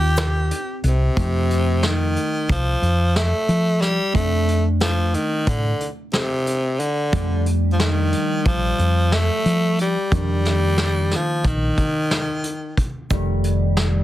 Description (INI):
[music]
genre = progressive instrumental, band music in an uneven meter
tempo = 181 BPM (eighths)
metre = 9/8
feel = straight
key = F mixolydian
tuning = A4 = 438 Hz
[part]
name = raspy tenor saxophone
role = melody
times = 0.0-12.8 s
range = C3 to G4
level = -22 LUFS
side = equal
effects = none
[part]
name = hollow-body jazz guitar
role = accompaniment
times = 0.0-14.0 s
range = Eb3 to G4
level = -28 LUFS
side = right 1 dB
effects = double-tracked left and right
[part]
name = hollow-body short-scale fingered electric bass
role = bass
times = 0.0-14.0 s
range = F1 to F3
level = -20 LUFS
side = equal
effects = none
[part]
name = vintage brush drum kit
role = drums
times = 0.2-13.9 s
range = hi-hat, kick drum, snare drum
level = -24 LUFS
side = equal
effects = none
[part]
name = egg shaker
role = percussion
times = 0.2-0.5, 13.1-13.4 s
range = none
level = -35 LUFS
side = right 10 dB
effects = none
[sound]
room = little or no reverb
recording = dense, heavily limited modern master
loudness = -18 LUFS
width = side -14 dB against mid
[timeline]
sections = 0.0-1.2 A section; 1.2-13.1 B section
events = none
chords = 0.0 Eb6; 1.2 F7; 4.1 F6; 7.1 Ebmaj9#11; 10.1 Bbadd11; 13.1 F7